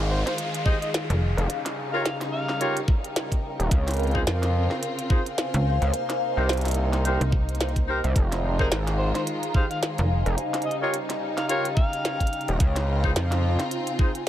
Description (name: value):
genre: glitch hop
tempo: 108 BPM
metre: 4/4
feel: swing 57% on 16ths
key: F minor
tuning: A4 = 439 Hz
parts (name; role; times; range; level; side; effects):
- warm studio string section; sustained chords; 0.0-14.3 s; C3 to F4; -32 LUFS; left 1 dB; sidechain pumping
- gritty driven synth bass; bass; 0.0-13.6 s; Eb1 to F2; -24 LUFS; equal; none
- downlifter; sound effects; 0.0-3.7 s; none; -37 LUFS; equal; none
- ethereal airy pad; texture; 0.5-14.3 s; Eb4 to C6; -32 LUFS; left 1 dB; ensemble chorus, built-in reverb, phaser, sidechain pumping
- overdriven harmonica; melody; 0.1-2.8, 8.6-12.6 s; Bb4 to F5; -33 LUFS; equal; vintage 12-bit sampler grit, digital delay
- glitchy drum kit; drums; 0.3-14.3 s; hi-hat, snare drum; -30 LUFS; equal; overdrive
- warm horn section; stabs; 0.7-14.1 s; Eb4 to Db5; -30 LUFS; equal; sidechain pumping, digital delay
- electronic kick drum; drums; 0.7-14.1 s; none; -22 LUFS; equal; none
- slap-like FM bass; bass; 1.1-1.4, 5.5-10.2 s; F1 to Db2; -23 LUFS; equal; none
room: light reverb, digital ambience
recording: none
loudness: -22 LUFS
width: side -12 dB against mid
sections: 0.0-14.3 A section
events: none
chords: 0.0 Fm7; 1.5 Eb7; 3.7 Dbmaj7; 5.9 Cm7; 8.2 Fm7; 10.4 Eb7; 12.6 Dbmaj7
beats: 0.38 0.94 | 1.49 2.05 2.60 3.16 | 3.71 4.27 4.83 5.38 | 5.94 6.49 7.05 7.60 | 8.16 8.71 9.27 9.82 | 10.38 10.94 11.49 12.05 | 12.60 13.16 13.71 14.27